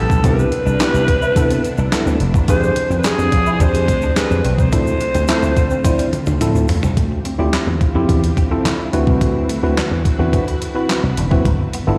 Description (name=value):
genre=early-eighties boogie funk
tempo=107 BPM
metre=4/4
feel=straight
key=unclear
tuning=A4 = 440 Hz
part: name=growling alto saxophone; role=melody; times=0.0-6.4 s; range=Ab4 to C5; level=-23 LUFS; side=equal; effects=plate reverb, slapback echo, tape echo
part: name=soft string machine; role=sustained chords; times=0.2-12.0 s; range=C3 to B4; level=-30 LUFS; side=equal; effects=ensemble chorus, plate reverb
part: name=semi-hollow electric guitar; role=riff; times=0.0-12.0 s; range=A3 to F4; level=-31 LUFS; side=equal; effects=none
part: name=slap bass with an envelope filter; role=bass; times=0.0-12.0 s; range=E1 to F3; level=-21 LUFS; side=equal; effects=none
part: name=crisp 8-bit digital drum machine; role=drums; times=0.1-11.9 s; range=handclaps, hi-hat, kick drum, snare drum, toms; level=-21 LUFS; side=equal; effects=overdrive
part: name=egg shaker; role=percussion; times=0.1-7.0 s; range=none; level=-40 LUFS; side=equal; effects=none
part: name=tine electric piano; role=accompaniment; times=0.2-12.0 s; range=B3 to C5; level=-24 LUFS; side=equal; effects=plate reverb, slapback echo
room=light reverb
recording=live gig heard through the venue's PA, recital hall reverb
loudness=-16 LUFS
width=mono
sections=0.0-7.0 A section; 7.0-12.0 B section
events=drum fill 5.8-7.0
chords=0.2 Cmaj9; 2.5 Fm6; 4.7 Dm7; 7.0 Dm11; 8.9 D13; 11.5 G13